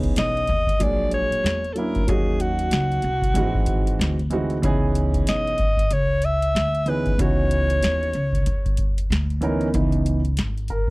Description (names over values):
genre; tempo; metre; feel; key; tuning
hip hop, jazz-hop; 94 BPM; 4/4; swing 60% on 16ths; C# dorian; A4 = 440 Hz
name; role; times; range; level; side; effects
dark grand piano; accompaniment; 0.0-10.9 s; E3 to A#4; -25 LUFS; right 2 dB; none
upright bass; bass; 0.0-10.9 s; G#1 to E2; -25 LUFS; equal; none
booming analog drum machine; drums; 0.0-10.9 s; hi-hat, kick drum, snare drum; -24 LUFS; equal; none
breathy alto saxophone; melody; 0.2-9.1 s; F#4 to E5; -24 LUFS; equal; none
room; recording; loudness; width
little or no reverb; dry, close 1970s-style studio recording; -19 LUFS; side -22 dB against mid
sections
0.0-9.7 A section; 9.7-10.9 B section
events
grand piano solo 9.7-10.9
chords
0.0 C#m9; 0.8 A#7alt; 2.1 D#m7; 3.4 G#7b13; 4.6 C#m9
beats
0.17 0.81 1.44 | 2.08 2.72 3.36 4.00 | 4.63 5.27 5.91 6.55 | 7.19 7.83 8.46 9.10 | 9.74 10.38